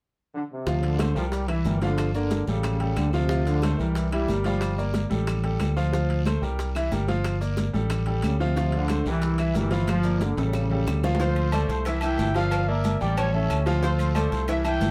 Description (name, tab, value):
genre	latin, salsa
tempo	182 BPM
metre	4/4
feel	straight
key	D minor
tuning	A4 = 440 Hz
part	warm trombone section	melody	0.3-4.9, 8.3-11.0 s	C3 to G3	-30 LUFS	equal	none
part	bright grand piano	accompaniment	0.7-14.9 s	E3 to G5	-31 LUFS	equal	none
part	fingered electric bass	bass	0.7-14.9 s	G1 to D2	-28 LUFS	equal	none
part	bongos and cowbell	percussion	0.7-14.9 s	none	-39 LUFS	equal	none
part	congas	percussion	0.7-14.9 s	none	-35 LUFS	equal	none
part	guiro	percussion	0.7-14.9 s	none	-48 LUFS	equal	none
part	maracas	percussion	0.7-14.9 s	none	-50 LUFS	equal	none
part	timbales and agogo bells	percussion	0.8-14.9 s	none	-38 LUFS	equal	none
part	claves	percussion	1.0-14.8 s	none	-46 LUFS	equal	none
part	mellow trumpet section	melody	11.2-14.9 s	C#4 to G5	-33 LUFS	equal	none
room	moderate studio reverb, RT60 0.6 s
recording	heard from further back in the room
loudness	-25 LUFS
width	mono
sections	0.7-11.2 A section; 11.2-14.9 B section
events	drum fill 9.9-11.2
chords	0.0 N.C.; 0.7 Dm7; 1.3 C7; 2.0 Gm7; 2.6 A7; 3.3 Dm7; 4.0 C7; 4.6 Gm7; 5.3 Dmadd11/A; 5.9 Dm7; 6.6 C7; 7.2 Gm7; 7.9 A7alt; 8.6 Dm7; 9.2 C7; 9.9 Gm7; 10.5 A7; 11.2 Dm7; 11.9 C7; 12.5 Gm7; 13.2 A7; 13.8 Dm7